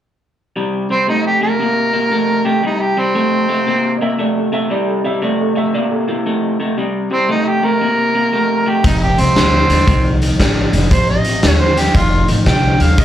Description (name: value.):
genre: electric blues shuffle.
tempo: 116 BPM.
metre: 4/4.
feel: swing 65% on 8ths.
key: unclear.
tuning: A4 = 440 Hz.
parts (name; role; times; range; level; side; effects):
electric guitar through a small old amp; riff; 0.6-13.0 s; F2 to Bb3; -17 LUFS; left 1 dB; spring reverb, slapback echo.
overdriven harmonica; melody; 0.9-4.0, 7.1-13.0 s; C4 to G5; -16 LUFS; right 2 dB; slapback echo.
dark upright piano; second line; 4.0-6.6 s; E4 to E5; -21 LUFS; right 7 dB; none.
upright bass; bass; 8.8-13.0 s; F1 to Eb2; -16 LUFS; equal; none.
raw garage drum kit; drums; 8.8-13.0 s; hi-hat, kick drum, snare drum; -15 LUFS; equal; none.
room: light reverb.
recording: live gig heard through the venue's PA, club reverb.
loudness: -12 LUFS.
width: side -10 dB against mid.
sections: 0.6-13.0 A section.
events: none.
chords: 0.6 C7(no3); 8.8 F7.